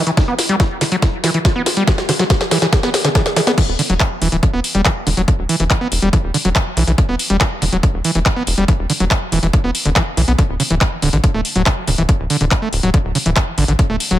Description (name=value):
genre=psychedelic trance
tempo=141 BPM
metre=4/4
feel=straight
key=E minor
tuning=A4 = 439 Hz
part: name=overdriven acid bass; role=riff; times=0.0-14.2 s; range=C#3 to B3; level=-19 LUFS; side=equal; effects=distortion, auto-pan, sidechain pumping, dub echo
part: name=techno drum kit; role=drums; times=0.1-14.2 s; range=crash cymbal, handclaps, hi-hat, snare drum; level=-19 LUFS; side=left 1 dB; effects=none
part: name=electronic kick drum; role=drums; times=0.2-13.9 s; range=none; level=-15 LUFS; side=equal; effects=none
part: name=tight sequencer bass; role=bass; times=3.7-14.2 s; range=D1 to B1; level=-18 LUFS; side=equal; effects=tube saturation
room=light reverb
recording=none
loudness=-14 LUFS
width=side -13 dB against mid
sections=0.0-3.6 A section; 3.6-14.2 B section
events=build-up 0.0-3.6; drum fill 0.0-3.6; drop 3.6-14.2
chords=0.0 E5; 10.4 D5